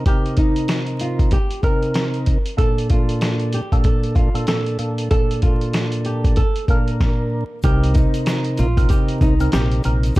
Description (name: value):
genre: hip hop, boom-bap hip-hop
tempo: 95 BPM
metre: 4/4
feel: swing 60% on 16ths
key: C dorian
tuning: A4 = 440 Hz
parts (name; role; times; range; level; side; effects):
- percussive tonewheel organ; accompaniment; 0.0-10.2 s; Bb2 to Bb4; -22 LUFS; equal; slow rotary speaker, cassette tape
- flamenco guitar; melody; 0.1-10.2 s; Eb4 to Bb4; -26 LUFS; right 1 dB; none
- dusty soul sampler-style drum kit; drums; 0.1-10.2 s; hi-hat, kick drum, snare drum; -18 LUFS; equal; none
- deep dub fingered electric bass; bass; 7.6-10.2 s; Bb1 to C2; -18 LUFS; equal; none
- egg shaker; percussion; 7.6-10.2 s; none; -49 LUFS; left 4 dB; none
room: digital ambience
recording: dark, warm production, vinyl crackle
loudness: -16 LUFS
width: side -19 dB against mid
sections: 0.0-7.6 A section; 7.6-10.2 B section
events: stop 7.0-7.6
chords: 0.0 Cm7; 2.6 Bbmaj7; 7.6 Cm7